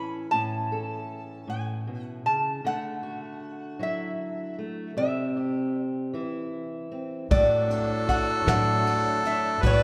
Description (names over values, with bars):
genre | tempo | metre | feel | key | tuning
acoustic folk duo or small band | 52 BPM (dotted quarters) | 6/8 | straight | unclear | A4 = 440 Hz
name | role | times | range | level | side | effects
lap resonator guitar | melody | 0.0-9.8 s | D5 to B5 | -30 LUFS | equal | none
fingerpicked steel-string acoustic guitar | accompaniment | 0.0-9.8 s | A2 to A4 | -34 LUFS | equal | none
mellow harmonica | second line | 7.3-9.8 s | A4 to B4 | -28 LUFS | equal | none
musette accordion | sustained chords | 7.3-9.8 s | F#3 to D4 | -36 LUFS | equal | none
upright bass | bass | 7.3-9.8 s | A2 | -31 LUFS | equal | none
soft brush drum kit | drums | 7.3-9.8 s | kick drum, ride cymbal, snare drum | -32 LUFS | equal | none
room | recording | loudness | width
wet church reverb, RT60 3.5 s | recorded in a church or concert hall | -27 LUFS | mono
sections
0.0-7.3 A section; 7.3-9.8 B section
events
none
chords
0.0 A; 2.6 Dadd9; 5.0 C; 7.3 D/A